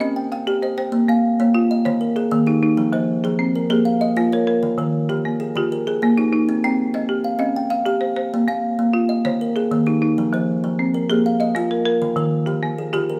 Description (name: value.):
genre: southern african traditional, mbira-style interlocking cycle.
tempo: 130 BPM (dotted quarters).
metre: 12/8.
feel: straight.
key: Bb dorian.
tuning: A4 = 440 Hz.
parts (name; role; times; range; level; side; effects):
folk marimba with hard mallets; arpeggios; 0.0-13.2 s; Eb3 to F5; -24 LUFS; equal; none.
kalimba; arpeggios; 0.0-13.2 s; Eb3 to G5; -22 LUFS; equal; none.
room: moderate recital hall reverb, RT60 1.7 s.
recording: none.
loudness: -20 LUFS.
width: mono.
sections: 0.9-13.2 A section.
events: none.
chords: 0.0 Cm; 0.9 Bbm; 1.9 Eb; 2.8 Fm; 3.7 Bbm; 4.6 Eb; 6.5 Cm; 8.3 Bb5; 9.3 Eb; 10.2 F5; 11.1 Bb5; 12.0 Eb.